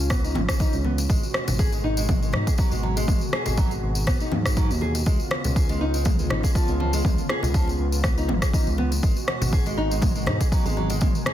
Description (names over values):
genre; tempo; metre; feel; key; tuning
afro house; 121 BPM; 4/4; swing 54% on 16ths; G# dorian; A4 = 442 Hz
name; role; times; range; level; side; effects
warm analog pad; sustained chords; 0.0-11.3 s; B2 to G#4; -32 LUFS; equal; wide subtle chorus, sidechain pumping
smooth gliding synth bass; bass; 0.0-11.1 s; G#1 to G#2; -26 LUFS; equal; sidechain pumping
nylon-string guitar; arpeggios; 0.1-11.3 s; E#3 to G#4; -30 LUFS; equal; sidechain pumping, low-pass filter, digital delay
deep house drum kit; drums; 0.1-11.3 s; rim click, toms; -29 LUFS; equal; soft clipping on snare
electronic kick drum; drums; 0.1-11.1 s; none; -22 LUFS; equal; none
congas; percussion; 0.1-11.3 s; none; -33 LUFS; left 3 dB; none
tambourine; percussion; 0.1-11.2 s; none; -35 LUFS; left 3 dB; none
room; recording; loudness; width
light reverb; dense, heavily limited modern master; -20 LUFS; side -12 dB against mid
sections
0.0-11.3 A section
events
none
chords
0.0 C#7; 1.1 G#m7; 5.1 C#7; 9.0 G#m7